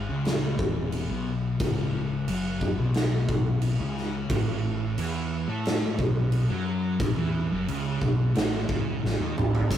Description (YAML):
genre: stoner and doom metal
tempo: 89 BPM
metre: 4/4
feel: straight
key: unclear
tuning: A4 = 438 Hz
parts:
  - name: thick fuzz guitar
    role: riff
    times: 0.0-9.8 s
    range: C#2 to A3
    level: -29 LUFS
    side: left 4 dB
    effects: distortion
  - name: mellow fretless electric bass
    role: bass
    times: 0.0-9.8 s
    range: C#1 to A2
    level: -31 LUFS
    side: right 1 dB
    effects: overdrive
  - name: big rock drum kit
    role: drums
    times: 0.3-9.8 s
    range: crash cymbal, kick drum, snare drum, toms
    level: -28 LUFS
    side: equal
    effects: none
  - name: thick fuzz guitar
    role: riff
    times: 4.3-9.8 s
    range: C#2 to A3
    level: -30 LUFS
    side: right 6 dB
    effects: distortion
room: light reverb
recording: rough rehearsal-room recording, warm saturation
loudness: -24 LUFS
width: side -10 dB against mid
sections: 0.0-9.7 A section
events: drum fill 9.0-9.7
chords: 0.0 C#m; 4.3 A5